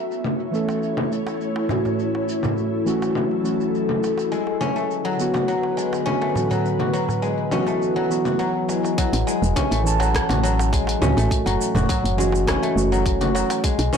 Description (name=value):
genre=organic downtempo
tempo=103 BPM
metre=4/4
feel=straight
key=F# minor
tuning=A4 = 440 Hz
part: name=ethereal airy pad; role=sustained chords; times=0.0-9.0 s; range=D3 to C#5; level=-26 LUFS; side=left 3 dB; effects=ensemble chorus, built-in reverb, sidechain pumping
part: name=guzheng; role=arpeggios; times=0.0-14.0 s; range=F#3 to F#4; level=-24 LUFS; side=left 2 dB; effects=ping-pong delay
part: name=deep house drum kit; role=drums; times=0.1-14.0 s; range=congas, hi-hat, rim click, shaker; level=-27 LUFS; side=equal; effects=low-pass filter on hats, low-pass filter on perc, soft clipping on snare, low-pass filter on snare, low-pass filter on room
part: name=muted felt-like synth keys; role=accompaniment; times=0.5-13.7 s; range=D3 to A5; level=-24 LUFS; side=right 1 dB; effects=chorus, sidechain pumping, ping-pong delay
part: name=darbuka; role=percussion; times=0.7-13.9 s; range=none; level=-30 LUFS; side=right 2 dB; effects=none
part: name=electronic kick drum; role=drums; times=9.0-13.8 s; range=none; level=-23 LUFS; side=equal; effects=none
part: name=woody FM bass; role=bass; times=9.1-13.9 s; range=E1 to C#2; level=-22 LUFS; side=equal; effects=tube saturation, sidechain pumping
room=moderate digital room reverb, RT60 1.1 s, digital ambience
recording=blown-out, overdriven recording, overdrive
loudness=-19 LUFS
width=side -7 dB against mid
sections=0.0-9.0 A section; 9.0-14.0 B section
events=none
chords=0.0 F#m7; 4.3 Bm7; 6.6 Esus2; 9.0 F#m7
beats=0.24 0.82 1.41 | 1.99 2.57 3.15 3.74 | 4.32 4.90 5.48 6.07 | 6.65 7.23 7.81 8.40 | 8.98 9.56 10.14 10.73 | 11.31 11.89 12.47 13.06 | 13.64